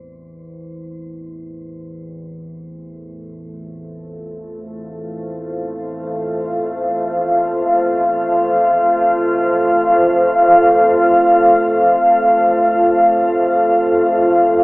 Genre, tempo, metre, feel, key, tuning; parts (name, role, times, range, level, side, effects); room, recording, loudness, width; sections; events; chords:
dark ambient drone; free time; A4 = 437 Hz
deep rumbling drone; drone; 0.0-14.6 s; A1 to E2; -36 LUFS; equal; built-in reverb, wide subtle chorus
quartz singing bowl; texture; 0.0-11.0 s; C4 to C5; -49 LUFS; equal
deep dark ambient pad; sustained chords; 4.3-14.6 s; A3 to F5; -12 LUFS; equal; chorus, built-in reverb, shimmer reverb
wet cathedral reverb, RT60 5.1 s; telephone sound; -12 LUFS; side -23 dB against mid
0.0-11.0 A section; 11.0-14.6 B section
fade-in on singing bowl 0.0-11.0
0.0 F